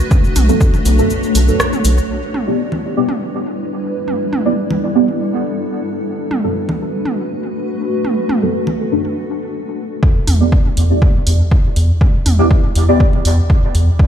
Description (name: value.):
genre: dub techno.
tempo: 121 BPM.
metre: 4/4.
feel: straight.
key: E minor.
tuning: A4 = 442 Hz.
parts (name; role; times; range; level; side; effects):
granular cloud pad; sustained chords; 0.0-10.0 s; G3 to C#5; -20 LUFS; left 1 dB; built-in reverb, sidechain pumping.
electronic kick drum; drums; 0.1-0.7, 10.0-14.1 s; none; -12 LUFS; equal; overdrive.
punchy analog drum machine; drums; 0.1-2.1, 10.3-13.9 s; cabasa, hi-hat, rim click; -23 LUFS; right 1 dB; dub echo.
electronic toms and congas; percussion; 0.1-13.2 s; none; -24 LUFS; right 2 dB; overdrive, sidechain pumping on toms, sidechain pumping on perc, dub echo.
round analog bass; bass; 0.4-2.0, 10.3-13.9 s; B1 to E2; -12 LUFS; equal; sidechain pumping.
deep mellow chord stab; stabs; 0.5-13.0 s; F#3 to D5; -19 LUFS; right 1 dB; chorus, phaser, sidechain pumping, dub echo.
room: light reverb, digital ambience.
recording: played on a big sound system in a bare room, stone room reverb.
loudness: -13 LUFS.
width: side -9 dB against mid.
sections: 0.0-2.1 A section; 2.1-10.0 B section; 10.0-14.1 A section.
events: kick drops out 1.1-2.1; filter sweep on ambient pad 2.1-10.0.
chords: 0.0 Bm7; 2.1 Em7; 6.1 Bm7; 10.0 Em7.